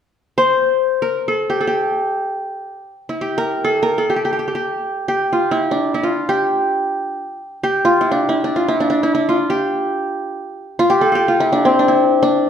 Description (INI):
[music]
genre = Turkish makam ensemble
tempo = free time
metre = none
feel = none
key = G makam huseyni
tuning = A4 = 440 Hz
[part]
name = qanun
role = solo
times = 0.4-12.5 s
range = C4 to C5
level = -15 LUFS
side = equal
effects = none
[sound]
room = wet large studio reverb, RT60 1.4 s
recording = band playing live in one room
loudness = -15 LUFS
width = side -8 dB against mid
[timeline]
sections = 0.2-12.5 A section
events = none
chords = none